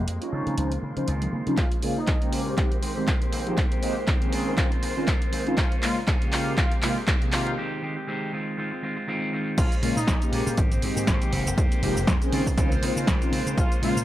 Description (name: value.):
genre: filtered disco house.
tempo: 120 BPM.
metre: 4/4.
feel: swing 56% on 16ths.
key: Bb dorian.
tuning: A4 = 440 Hz.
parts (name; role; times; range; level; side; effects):
string machine, full ensemble; sustained chords; 0.0-14.0 s; Bb3 to C6; -35 LUFS; equal; phaser, ensemble chorus, vintage 12-bit sampler grit, sidechain pumping, low-pass filter.
electric guitar with an envelope filter; riff; 0.0-14.0 s; Eb3 to G4; -32 LUFS; equal; sidechain pumping, low-pass filter.
slap bass with an envelope filter; bass; 0.0-14.0 s; F1 to Db3; -32 LUFS; equal; sidechain pumping, high-pass filter, low-pass filter.
punchy analog drum machine; drums; 0.1-14.0 s; crash cymbal, handclaps, hi-hat, shaker, snare drum; -30 LUFS; equal; high-pass filter on hats, high-pass filter on snare, high-pass filter on cymbals, high-pass filter on perc.
tube shaker and congas; percussion; 0.1-1.6 s; none; -34 LUFS; right 1 dB; sidechain pumping on perc, low-pass filter on perc.
mellow synth brass; accompaniment; 0.2-14.0 s; C3 to Db5; -29 LUFS; equal; chorus, phaser, cassette tape, sidechain pumping, low-pass filter.
clear horn section; melody; 1.6-2.3, 5.6-10.3, 13.6-14.0 s; Eb4 to F4; -33 LUFS; equal; sidechain pumping, low-pass filter.
electronic kick drum; drums; 1.6-13.7 s; none; -24 LUFS; equal; none.
room: light reverb.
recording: none.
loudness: -22 LUFS.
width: side -14 dB against mid.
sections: 0.0-1.6 A section; 1.6-9.6 B section; 9.6-14.0 C section.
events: filter sweep 0.0-1.6, 1.6-9.6; build-up 1.6-9.6; drum fill 1.6-7.6; break 7.6-9.6; drop 9.6-14.0.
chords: 0.3 Dbmaj9; 1.6 Bbm7; 2.6 Abmaj7; 3.3 Fm9; 4.3 Dbmaj9; 5.6 Bbm7; 6.6 Abmaj7; 7.3 Fm9; 8.3 Ab6/Eb; 9.6 Bbm7; 10.6 Abmaj7; 11.3 Fm9; 12.3 Dbmaj9.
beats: 0.08 0.58 1.08 | 1.58 2.08 2.58 3.08 | 3.58 4.08 4.58 5.08 | 5.58 6.08 6.58 7.08 | 7.58 8.08 8.58 9.08 | 9.58 10.08 10.58 11.08 | 11.58 12.08 12.58 13.08 | 13.58.